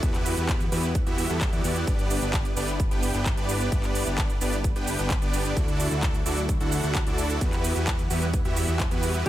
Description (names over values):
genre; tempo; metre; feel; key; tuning
EDM, festival progressive house; 130 BPM; 4/4; straight; G major; A4 = 440 Hz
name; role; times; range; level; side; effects
lush unison pad; sustained chords; 0.0-9.3 s; D3 to F#5; -36 LUFS; equal; chorus, phaser, sidechain pumping
supersaw chords; riff; 0.0-9.3 s; B3 to G5; -29 LUFS; right 1 dB; sidechain pumping, digital delay
fat analog bass; bass; 0.0-9.3 s; G1 to E2; -29 LUFS; equal; sidechain pumping
big-room dance drum kit; drums; 0.0-9.3 s; cabasa, handclaps, hi-hat; -33 LUFS; right 1 dB; small room ambience
electronic kick drum; drums; 0.0-9.3 s; none; -27 LUFS; equal; small room ambience
room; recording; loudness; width
little or no reverb; none; -23 LUFS; side -13 dB against mid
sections
0.0-9.3 A section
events
none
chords
0.0 Emadd9; 1.9 G; 5.6 Dadd9; 7.4 Emadd9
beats
| 0.03 0.49 0.95 1.41 | 1.87 2.34 2.80 3.26 | 3.72 4.18 4.64 5.11 | 5.57 6.03 6.49 6.95 | 7.41 7.87 8.34 8.80 | 9.26